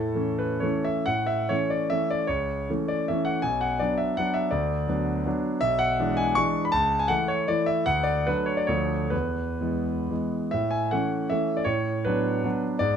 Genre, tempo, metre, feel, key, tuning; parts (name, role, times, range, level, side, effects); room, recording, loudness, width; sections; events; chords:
classical, romantic triple-time dance for piano with dotted rhythms; 116-175 BPM; 3/4; rubato; A major; A4 = 442 Hz
clear concert grand piano; solo; 0.0-13.0 s; B1 to C#6; -23 LUFS; equal
light reverb; close, detailed microphones; -23 LUFS; side -8 dB against mid
0.0-1.1 A section; 1.1-10.5 B section; 10.5-13.0 C section
0.0 A; 2.3 A/C#; 3.4 Bm; 4.5 Bm/D; 5.6 E7/B; 6.7 A/C#; 7.9 D; 8.7 Dm; 9.1 E; 10.5 A; 11.7 Bm7/A